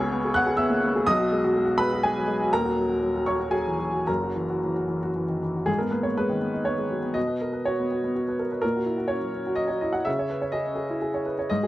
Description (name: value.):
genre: neoclassical minimalist piano.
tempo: 107-130 BPM.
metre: 3/4.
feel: rubato.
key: unclear.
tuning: A4 = 440 Hz.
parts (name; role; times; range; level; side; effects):
clear upright piano; solo; 0.0-11.7 s; D#1 to F#6; -23 LUFS; equal; none.
room: light reverb.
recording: dry, close 1970s-style studio recording.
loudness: -23 LUFS.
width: side -16 dB against mid.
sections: 0.0-5.7 A section; 5.7-11.7 B section.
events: none.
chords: 0.0 C#m7; 1.1 G#m7/B; 2.5 D#m7; 4.1 F#7; 5.7 G#m; 7.2 Bsus2; 8.6 F#/A#; 10.1 C#madd9.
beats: 0.11 0.58 | 1.06 1.54 2.02 | 2.51 3.02 3.53 | 4.08 4.63 5.17 | 5.68 6.18 6.67 | 7.16 7.66 8.14 | 8.62 9.10 9.59 | 10.07 10.55 11.01 | 11.50.